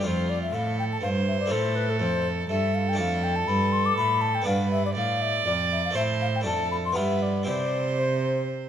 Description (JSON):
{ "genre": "classical, baroque-style sonata movement with continuo", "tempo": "121 BPM", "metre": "3/4", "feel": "rubato", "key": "C major", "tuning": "A4 = 441 Hz", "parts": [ { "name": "baroque flute", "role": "melody", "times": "0.0-8.5 s", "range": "A4 to D6", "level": "-28 LUFS", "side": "left 6 dB", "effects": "none" }, { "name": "rich violin", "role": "second line", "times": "0.0-8.7 s", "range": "F4 to D5", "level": "-29 LUFS", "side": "right 6 dB", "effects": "none" }, { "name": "harpsichord", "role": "accompaniment", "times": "0.0-8.7 s", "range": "F2 to D5", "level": "-33 LUFS", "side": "equal", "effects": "none" }, { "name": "rich cello", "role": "bass", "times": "0.0-8.7 s", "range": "F2 to C3", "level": "-28 LUFS", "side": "right 2 dB", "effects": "none" } ], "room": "moderate recital hall reverb, RT60 1.7 s", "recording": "none", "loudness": "-23 LUFS", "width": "side -9 dB against mid", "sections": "0.0-8.7 A section", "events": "none", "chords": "0.1 F; 3.0 Dm/F; 4.5 G7; 6.0 Am; 6.5 Dm/F; 7.0 G7; 7.5 C" }